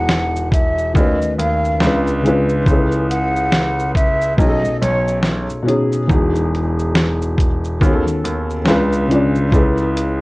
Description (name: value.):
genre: lo-fi hip hop.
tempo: 70 BPM.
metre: 4/4.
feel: swing 57% on 16ths.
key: unclear.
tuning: A4 = 436 Hz.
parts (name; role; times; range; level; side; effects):
breathy mellow silver concert flute; melody; 0.0-5.2 s; C#5 to F#5; -20 LUFS; equal; low-pass filter, analog delay.
felt-muted upright piano; accompaniment; 0.0-10.2 s; B2 to D5; -18 LUFS; left 1 dB; low-pass filter.
warm grand piano; bass; 0.0-10.2 s; E1 to D#2; -20 LUFS; equal; none.
dusty soul sampler-style drum kit; drums; 0.1-10.2 s; hi-hat, kick drum, shaker, snare drum; -17 LUFS; equal; none.
room: moderate studio reverb, RT60 0.5 s.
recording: worn, warbling old tape, cassette tape, warbly pitch drift.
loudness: -14 LUFS.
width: side -22 dB against mid.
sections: 0.0-10.2 A section.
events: none.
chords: 0.0 Emaj7; 1.0 B7/D#; 1.8 C#7b9; 2.7 F#m11/C#; 4.4 B9; 6.1 Emaj7; 7.8 B7/D#; 8.7 C#7b9; 9.5 Amaj9/C#.